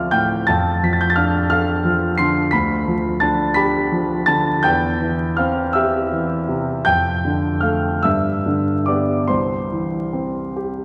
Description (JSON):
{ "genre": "classical, romantic nocturne for solo piano", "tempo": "47-59 BPM (dotted quarters)", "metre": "12/8", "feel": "rubato", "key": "C major", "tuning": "A4 = 441 Hz", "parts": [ { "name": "warm grand piano", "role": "solo", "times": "0.0-10.8 s", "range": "C2 to C7", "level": "-19 LUFS", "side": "equal", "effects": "none" } ], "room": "wet church reverb, RT60 3.1 s", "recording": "recorded in a church or concert hall, vinyl crackle", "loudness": "-19 LUFS", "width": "mono", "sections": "0.0-10.8 A section", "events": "none", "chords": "0.5 Dm/F; 2.5 G7/D; 4.6 C/E; 6.9 Dm/F; 8.0 G; 9.3 C", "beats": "0.48 1.52 | 2.54 3.58 4.64 5.74 | 6.86 8.04 9.29 10.55" }